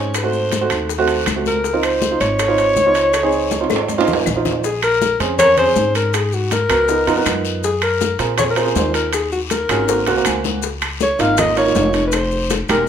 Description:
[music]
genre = Afro-Cuban jazz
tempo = 160 BPM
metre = 4/4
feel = straight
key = Db major, Bb minor from 4.6 s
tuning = A4 = 440 Hz
[part]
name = mellow alto saxophone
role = melody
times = 0.0-12.9 s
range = Gb4 to F5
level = -17 LUFS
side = left 1 dB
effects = none
[part]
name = warm baby grand piano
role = accompaniment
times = 0.0-12.8 s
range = Ab3 to Ab5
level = -20 LUFS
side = right 5 dB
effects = none
[part]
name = upright bass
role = bass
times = 0.0-12.9 s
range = E1 to Bb2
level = -24 LUFS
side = left 1 dB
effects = none
[part]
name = claves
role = percussion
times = 0.1-12.9 s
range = none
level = -30 LUFS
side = left 7 dB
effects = none
[part]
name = congas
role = percussion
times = 0.1-12.9 s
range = none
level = -28 LUFS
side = left 3 dB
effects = none
[part]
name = guiro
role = percussion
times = 0.1-12.9 s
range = none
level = -30 LUFS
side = left 9 dB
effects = none
[part]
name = maracas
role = percussion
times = 0.1-12.9 s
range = none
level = -31 LUFS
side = left 12 dB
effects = none
[part]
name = timbales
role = percussion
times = 0.1-12.9 s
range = none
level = -25 LUFS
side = right 6 dB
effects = none
[part]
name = bongos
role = percussion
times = 0.2-12.7 s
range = none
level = -27 LUFS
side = left 10 dB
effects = none
[sound]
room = moderate large studio reverb, RT60 1.0 s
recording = minimal, uncompressed stereo recording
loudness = -14 LUFS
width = side -8 dB against mid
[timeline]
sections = 0.0-4.6 A section; 4.6-12.9 B section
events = drum fill 3.5-4.6, 9.9-10.6; grand piano fill 10.1-10.6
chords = 0.1 Ab7b9; 1.6 Dbmaj7; 4.6 Bbm9; 6.1 Abm9; 6.9 Db13; 7.6 Gbmaj9#11; 9.1 Ebm11; 9.9 Ab7; 10.6 Db6; 12.1 Fm11

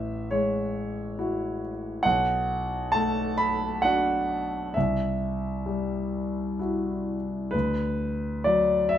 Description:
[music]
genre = classical, impressionist solo piano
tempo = 63-70 BPM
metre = 3/4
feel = rubato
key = unclear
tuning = A4 = 441 Hz
[part]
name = warm concert grand piano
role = solo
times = 0.0-9.0 s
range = A1 to B5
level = -24 LUFS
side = equal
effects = none
[sound]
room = light reverb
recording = none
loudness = -24 LUFS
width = side -10 dB against mid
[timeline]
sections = 0.0-9.0 A section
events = none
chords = 0.0 F#m9/A; 2.0 Bm7; 4.8 C; 7.5 D6

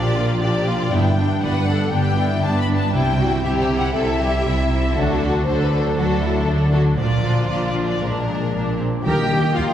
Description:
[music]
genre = cinematic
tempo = 119 BPM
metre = 4/4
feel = straight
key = unclear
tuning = A4 = 440 Hz
[part]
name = rich studio violin section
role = melody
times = 0.0-9.7 s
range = A4 to B5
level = -26 LUFS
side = left 4 dB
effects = none
[part]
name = warm symphonic violin section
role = second line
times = 0.0-9.6 s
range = D4 to G5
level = -26 LUFS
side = left 1 dB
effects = none
[part]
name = bright symphonic viola section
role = accompaniment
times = 0.0-9.7 s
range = F3 to Eb5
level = -26 LUFS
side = right 1 dB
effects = none
[part]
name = concert harp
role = arpeggios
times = 0.0-9.7 s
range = G2 to A5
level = -26 LUFS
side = left 2 dB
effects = none
[part]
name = rich symphonic cello section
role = bass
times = 0.0-9.7 s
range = G2 to G4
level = -23 LUFS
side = right 2 dB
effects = none
[part]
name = warm symphonic double bass section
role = bass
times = 0.0-9.7 s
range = G1 to Eb2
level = -23 LUFS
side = right 1 dB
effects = none
[part]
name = timpani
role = percussion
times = 0.9-1.6, 9.1-9.7 s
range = G2 to Eb3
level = -26 LUFS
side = left 1 dB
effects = none
[part]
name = warm French horn section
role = sustained chords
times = 9.0-9.7 s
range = Eb3 to Bb3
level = -26 LUFS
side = left 4 dB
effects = none
[part]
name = concert flute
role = second line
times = 9.1-9.7 s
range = F5 to G5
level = -26 LUFS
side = right 2 dB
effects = none
[sound]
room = wet concert hall reverb, RT60 1.9 s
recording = heard from further back in the room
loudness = -17 LUFS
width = side -10 dB against mid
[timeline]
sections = 0.0-9.1 A section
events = none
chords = 0.0 Bb; 0.9 G; 2.9 C; 5.0 D; 7.0 Bb; 8.0 Bb7; 9.1 Eb

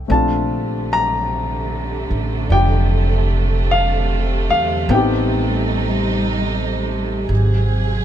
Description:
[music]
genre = jazz ballad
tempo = 50 BPM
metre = 4/4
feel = swing 67% on 8ths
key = unclear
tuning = A4 = 440 Hz
[part]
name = warm baby grand piano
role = accompaniment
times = 0.0-7.3 s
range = A3 to Bb5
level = -20 LUFS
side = left 3 dB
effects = none
[part]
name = upright bass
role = bass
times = 0.0-8.0 s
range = F1 to E2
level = -19 LUFS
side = right 1 dB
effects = none
[part]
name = warm symphonic string section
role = sustained chords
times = 0.1-8.0 s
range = C3 to Ab4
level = -23 LUFS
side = right 3 dB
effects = none
[sound]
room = little or no reverb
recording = close, detailed microphones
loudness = -16 LUFS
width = side -10 dB against mid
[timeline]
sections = 0.0-8.0 A section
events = none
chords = 0.1 Bbmaj9; 4.9 Am7b5; 7.3 Ab7

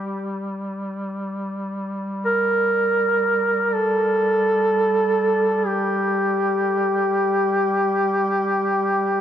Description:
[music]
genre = caucasian folk, Caucasian lament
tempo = free time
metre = none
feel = none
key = G minor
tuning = A4 = 440 Hz
[part]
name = warm duduk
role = melody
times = 0.0-9.2 s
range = G4 to Bb4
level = -19 LUFS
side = equal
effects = none
[part]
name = clear duduk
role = drone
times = 0.0-9.2 s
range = G3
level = -27 LUFS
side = equal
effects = none
[sound]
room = wet cathedral reverb, RT60 6.6 s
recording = none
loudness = -19 LUFS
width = side -9 dB against mid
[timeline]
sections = 0.0-9.2 A section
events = slowing down 3.4-9.2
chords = none

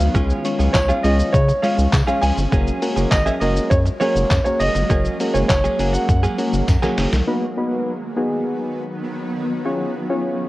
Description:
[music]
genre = dance-pop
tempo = 101 BPM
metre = 4/4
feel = straight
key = unclear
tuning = A4 = 436 Hz
[part]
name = clear baby grand piano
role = melody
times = 0.0-6.9 s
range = C#5 to G#5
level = -22 LUFS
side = right 1 dB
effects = digital delay
[part]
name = shimmering ambient pad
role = sustained chords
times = 0.0-10.5 s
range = D#3 to C#4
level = -28 LUFS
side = equal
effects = chorus, built-in reverb, sidechain pumping
[part]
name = direct-recorded clean electric guitar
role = riff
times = 0.0-7.2 s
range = F#3 to G#4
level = -26 LUFS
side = right 3 dB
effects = wide subtle chorus
[part]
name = round analog bass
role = bass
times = 0.0-7.2 s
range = F#1 to C#3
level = -19 LUFS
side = equal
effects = sidechain pumping
[part]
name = trip hop sampler-style drum kit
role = drums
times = 0.0-7.3 s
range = handclaps, hi-hat, kick drum, shaker, snare drum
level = -21 LUFS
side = equal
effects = none
[part]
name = soft electric-piano-like synth keys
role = accompaniment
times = 0.1-10.5 s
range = G#3 to A#5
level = -23 LUFS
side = left 1 dB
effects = chorus, sidechain pumping
[part]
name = tambourine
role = percussion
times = 0.7-6.8 s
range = none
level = -38 LUFS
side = left 4 dB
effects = none
[sound]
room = light reverb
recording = worn, warbling old tape, cassette tape, warbly pitch drift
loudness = -16 LUFS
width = side -17 dB against mid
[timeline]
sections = 0.0-7.3 A section; 7.3-10.5 B section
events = synth keys fill 6.4-7.3; drum fill 6.7-7.3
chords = 0.1 C#; 2.5 F#add9; 7.3 B; 9.7 C#

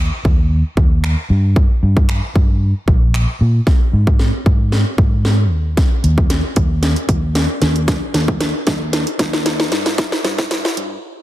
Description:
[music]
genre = dance-pop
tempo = 114 BPM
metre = 4/4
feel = straight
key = unclear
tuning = A4 = 440 Hz
[part]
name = vintage muted fingered electric bass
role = bass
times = 0.0-11.0 s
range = Bb1 to Bb2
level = -16 LUFS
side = equal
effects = sidechain pumping
[part]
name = house drum kit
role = drums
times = 0.2-10.9 s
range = finger snaps, hi-hat, kick drum, snare drum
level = -15 LUFS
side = equal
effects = overdrive
[sound]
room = little or no reverb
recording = dense, heavily limited modern master, high-pass filter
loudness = -13 LUFS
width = side -14 dB against mid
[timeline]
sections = 0.0-3.7 A section; 3.7-11.2 B section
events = build-up 3.7-11.2; drum fill 3.7-11.0; filter sweep 3.7-11.2; break 11.0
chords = none

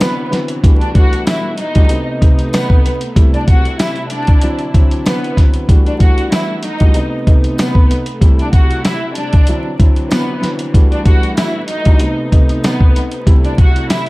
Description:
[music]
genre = hip hop, boom-bap hip-hop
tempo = 95 BPM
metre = 4/4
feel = swing 55% on 16ths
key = E minor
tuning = A4 = 441 Hz
[part]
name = warm studio violin section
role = melody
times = 0.0-14.1 s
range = B3 to F#5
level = -21 LUFS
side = equal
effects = high-pass filter, low-pass filter, tape echo
[part]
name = dark grand piano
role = accompaniment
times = 0.0-14.1 s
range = C3 to F#4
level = -20 LUFS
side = equal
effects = high-pass filter, low-pass filter
[part]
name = warm studio string section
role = sustained chords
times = 0.0-14.1 s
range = B2 to F#4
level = -28 LUFS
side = equal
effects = high-pass filter, low-pass filter
[part]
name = dusty soul sampler-style drum kit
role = drums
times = 0.0-14.1 s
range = hi-hat, kick drum, snare drum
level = -11 LUFS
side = equal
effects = none
[part]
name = tambourine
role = percussion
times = 0.0-14.1 s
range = none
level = -37 LUFS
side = left 2 dB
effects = none
[sound]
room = studio ambience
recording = echo-heavy mix, vinyl crackle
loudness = -10 LUFS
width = side -21 dB against mid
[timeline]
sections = 0.0-5.7 A section; 5.7-14.1 A section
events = none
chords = 0.0 D9; 0.6 Em11; 1.9 B7b9; 3.2 Am7; 4.4 D9; 5.7 Em11; 7.0 B7b9; 8.2 Am7; 9.5 D9; 10.7 Em11; 12.0 B7b9; 13.3 Am7

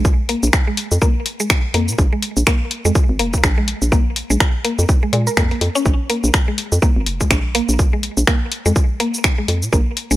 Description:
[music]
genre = minimal techno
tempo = 124 BPM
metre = 4/4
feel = swing 58% on 16ths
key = unclear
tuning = A4 = 440 Hz
[part]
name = hollow knocking FM bass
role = bass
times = 0.0-10.2 s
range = F1 to Bb2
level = -18 LUFS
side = equal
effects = sidechain pumping
[part]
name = electronic kick drum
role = drums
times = 0.0-9.8 s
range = none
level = -16 LUFS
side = equal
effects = none
[part]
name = house drum kit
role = drums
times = 0.0-10.2 s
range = finger snaps, hi-hat, shaker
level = -20 LUFS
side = left 1 dB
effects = none
[part]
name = mallet-like synth pluck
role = riff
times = 0.3-10.1 s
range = Ab3 to Bb4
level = -23 LUFS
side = equal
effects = chorus, sidechain pumping, digital delay
[sound]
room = little or no reverb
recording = none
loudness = -15 LUFS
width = side -16 dB against mid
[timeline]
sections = 0.0-10.2 A section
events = none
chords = 0.0 Bb5

